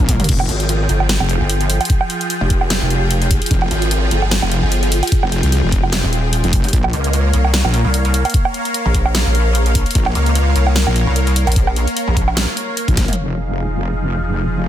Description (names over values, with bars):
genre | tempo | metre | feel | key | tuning
heavy wobble dubstep | 149 BPM | 4/4 | swing 55% on 16ths, half-time | F minor | A4 = 439 Hz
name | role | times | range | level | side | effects
supersaw pad | sustained chords | 0.0-14.7 s | F3 to G5 | -22 LUFS | equal | phaser, sidechain pumping
wobble bass | bass | 0.0-14.7 s | F1 to C2 | -18 LUFS | equal | chorus, overdrive
dubstep drum kit | drums | 0.0-13.3 s | crash cymbal, hi-hat, snare drum, toms, woodblock | -20 LUFS | right 2 dB | low-pass filter on hats, low-pass filter on perc, low-pass filter on snare, low-pass filter on toms, low-pass filter on cymbals
electronic kick drum | drums | 0.1-13.1 s | none | -16 LUFS | equal | none
pulsing pluck wobble bass | bass | 0.2-13.2 s | Eb1 to Db2 | -16 LUFS | equal | chorus, overdrive
room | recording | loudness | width
little or no reverb | dense, heavily limited modern master | -14 LUFS | side -11 dB against mid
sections
0.0-13.2 A section; 13.2-14.7 B section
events
drop 0.0-13.2; drum fill 0.0, 13.0; filter sweep on drum 13.2-14.7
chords
0.3 Fmadd9; 6.7 Bbm; 13.2 Fm7